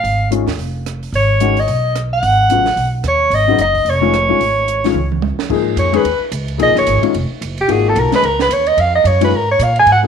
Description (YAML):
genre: modal jazz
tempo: 220 BPM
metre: 4/4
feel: swing 60% on 8ths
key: G# dorian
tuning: A4 = 440 Hz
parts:
  - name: mellow soprano saxophone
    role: melody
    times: 0.0-10.0 s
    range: G4 to G#5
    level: -14 LUFS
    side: right 1 dB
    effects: none
  - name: upright bass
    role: bass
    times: 0.0-10.1 s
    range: E#1 to A#2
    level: -18 LUFS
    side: right 1 dB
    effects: none
  - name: compact cocktail drum kit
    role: drums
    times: 0.0-9.9 s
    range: crash cymbal, hi-hat, kick drum, ride cymbal, rim click, snare drum, toms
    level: -26 LUFS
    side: right 11 dB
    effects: none
  - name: warm upright piano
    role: accompaniment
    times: 0.3-10.1 s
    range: C#3 to G#4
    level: -18 LUFS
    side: left 13 dB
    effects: none
room: moderate plate reverb, RT60 1.3 s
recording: 1960s-style stereo with parts hard left and right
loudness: -12 LUFS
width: side -7 dB against mid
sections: 0.0-5.5 A section; 5.5-10.1 B section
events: drum fill 5.0-5.5; soprano saxophone solo 5.5-10.1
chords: 0.0 C#; 1.1 G#m7; 3.3 C#; 5.5 G#9sus4; 7.7 C#/G#